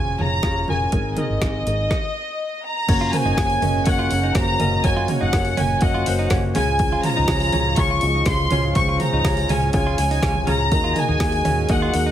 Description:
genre	piano-driven pop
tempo	123 BPM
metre	4/4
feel	straight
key	unclear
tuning	A4 = 437 Hz
part	warm studio violin section	melody	0.0-12.1 s	Eb5 to Db6	-23 LUFS	left 1 dB	none
part	warm concert grand piano	accompaniment	0.0-12.1 s	Ab2 to F5	-26 LUFS	left 2 dB	none
part	vintage muted fingered electric bass	bass	0.0-12.1 s	F1 to Eb2	-23 LUFS	equal	none
part	deep house drum kit	drums	0.2-12.1 s	crash cymbal, hi-hat, kick drum, snare drum, toms	-23 LUFS	right 1 dB	none
part	warm French horn section	second line	2.9-12.1 s	Db3 to Ab4	-30 LUFS	right 4 dB	none
part	tonewheel organ	sustained chords	2.9-12.1 s	Db3 to Gb4	-34 LUFS	equal	none
part	direct-recorded clean electric guitar	riff	3.0-12.1 s	Db4 to F4	-30 LUFS	right 8 dB	none
room	little or no reverb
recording	heavily compressed radio sound, multiband compression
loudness	-17 LUFS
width	side -11 dB against mid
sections	0.0-2.9 A section; 2.9-12.1 B section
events	stop 1.9-2.9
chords	0.0 Db/F; 0.9 Abadd9; 2.9 Gb; 6.6 Db; 10.7 Ebm

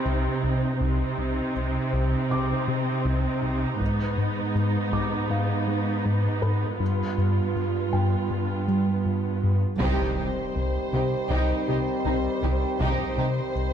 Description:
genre	cinematic, hybrid orchestral and electronic film score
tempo	80 BPM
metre	4/4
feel	straight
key	C harmonic minor, C minor from 9.8 s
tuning	A4 = 440 Hz
part	rich symphonic viola section	accompaniment	0.0-13.3 s	Cb4 to F4	-31 LUFS	right 2 dB	none
part	rich symphonic cello section	bass	0.0-13.3 s	G2 to C3	-28 LUFS	right 2 dB	none
part	felt-muted upright piano	texture	0.0-13.7 s	Eb4 to D6	-37 LUFS	left 1 dB	ping-pong delay
part	chorused synth bass	riff	0.1-13.7 s	C2 to Ab3	-27 LUFS	left 2 dB	none
part	solo taiko drums	drums	3.8-5.3, 9.8-13.5 s	none	-33 LUFS	equal	none
part	warm symphonic violin section	melody	9.8-13.7 s	C5	-32 LUFS	left 2 dB	none
part	warm symphonic violin section	second line	9.8-13.3 s	Eb4 to G4	-35 LUFS	equal	none
part	clear trombone section	sustained chords	9.8-13.7 s	Eb3 to G3	-33 LUFS	right 8 dB	none
part	mellow French horn section	sustained chords	9.8-13.7 s	C4 to G4	-32 LUFS	left 4 dB	none
part	warm symphonic double bass section	bass	9.8-13.3 s	C2	-33 LUFS	right 3 dB	none
part	impact	sound effects	9.8-12.8 s	none	-37 LUFS	equal	none
room	light reverb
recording	dark, warm production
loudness	-23 LUFS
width	side -8 dB against mid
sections	0.0-9.8 A section; 9.8-13.7 B section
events	band accent 9.8-10.6; impact 9.8-12.8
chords	0.0 Cm; 3.8 Abm; 6.8 G7; 9.8 Cm

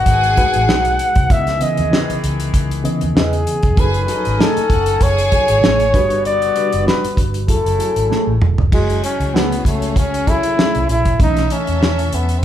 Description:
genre	lush 1970s-style soul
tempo	97 BPM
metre	4/4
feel	swing 54% on 16ths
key	F# dorian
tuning	A4 = 444 Hz
part	breathy flugelhorn	melody	0.0-12.4 s	G#3 to F#5	-18 LUFS	left 1 dB	none
part	reed electric piano	accompaniment	0.0-12.4 s	B2 to G#5	-24 LUFS	left 1 dB	fast tremolo
part	warm horn section	stabs	0.0-8.4 s	C#3 to G#5	-29 LUFS	left 3 dB	none
part	vintage muted fingered electric bass	bass	0.0-12.4 s	E1 to E2	-20 LUFS	equal	none
part	warm studio string section	second line	0.1-12.4 s	C#4 to G#5	-26 LUFS	left 1 dB	none
part	damped 70s drum kit	drums	0.1-12.4 s	crash cymbal, hi-hat, kick drum, snare drum, toms	-17 LUFS	equal	none
part	mellow electric guitar	riff	0.7-12.0 s	A3 to D#5	-25 LUFS	right 4 dB	none
room	moderate large studio reverb, RT60 1.2 s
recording	band playing live in one room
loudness	-13 LUFS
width	side -11 dB against mid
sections	0.0-8.7 A section; 8.7-12.4 B section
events	drum fill 8.1-8.7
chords	0.0 G#m7; 1.3 C#m9; 3.8 F#m69; 5.9 Gmaj7; 7.5 F#m9; 11.2 B9sus4

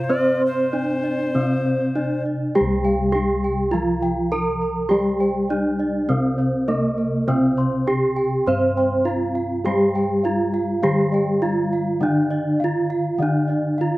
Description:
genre	gamelan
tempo	102 BPM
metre	4/4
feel	straight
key	C slendro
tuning	A4 = 440 Hz
part	gamelan-type bronze metallophone	melody	0.0-14.0 s	Bb3-40c to C5	-21 LUFS	right 1 dB	none
part	alto recorder	second line	0.0-2.2 s	C5 to D5+40c	-27 LUFS	left 2 dB	slapback echo
part	gamelan-type bronze metallophone	accompaniment	0.0-14.0 s	C3 to C4	-25 LUFS	left 2 dB	none
part	gamelan-type bronze metallophone	arpeggios	0.0-14.0 s	Bb4-40c to C6	-31 LUFS	right 3 dB	slapback echo
part	gamelan-type bossed gongs	bass	0.0-14.0 s	C2 to C5	-26 LUFS	equal	none
part	gamelan-type bossed gongs	arpeggios	0.1-14.0 s	Bb4-40c to C6	-32 LUFS	left 4 dB	slapback echo
room	little or no reverb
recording	recorded outdoors, with no room sound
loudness	-18 LUFS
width	side -18 dB against mid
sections	0.0-2.6 A section; 2.6-14.0 B section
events	none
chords	none

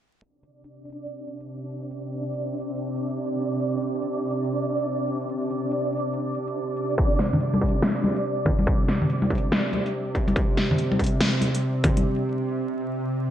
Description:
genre	deep dubstep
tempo	142 BPM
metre	4/4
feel	swing 62% on 16ths, half-time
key	unclear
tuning	A4 = 438 Hz
part	bowed-like drone	sustained chords	1.2-13.3 s	C3	-28 LUFS	right 1 dB	built-in reverb
part	dubstep drum kit	drums	0.2-12.0 s	hi-hat, snare drum	-25 LUFS	left 1 dB	gated reverb
part	flickering grainy texture	texture	0.9-12.1 s	D4 to D5	-31 LUFS	right 1 dB	built-in reverb, wide subtle chorus
part	electronic kick drum	drums	7.0-11.9 s	none	-23 LUFS	equal	distortion
part	congas	percussion	7.3-12.0 s	none	-27 LUFS	left 1 dB	none
room	moderate lush hall reverb, RT60 1.8 s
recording	bright 1980s-style digital production, vinyl crackle, low-pass filter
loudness	-22 LUFS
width	side -11 dB against mid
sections	0.2-13.3 A section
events	filter sweep 0.2-13.3; break 12.1-13.3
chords	0.2 Csus2

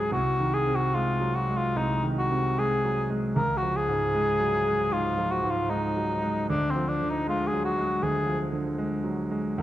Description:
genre	classical, romantic duo for cor anglais and grand piano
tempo	76 BPM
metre	4/4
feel	uneven beats, rubato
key	unclear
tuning	A4 = 441 Hz
part	mellow cor anglais	melody	0.0-8.4 s	C4 to Bb4	-26 LUFS	left 2 dB	none
part	bright concert grand piano	accompaniment	0.0-9.6 s	C2 to Ab3	-27 LUFS	right 1 dB	none
room	wet recital hall reverb, RT60 1.3 s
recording	dark, warm production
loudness	-24 LUFS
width	side -13 dB against mid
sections	0.0-9.6 A section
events	none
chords	0.1 Ab7/C; 3.4 Db; 6.5 Ddim

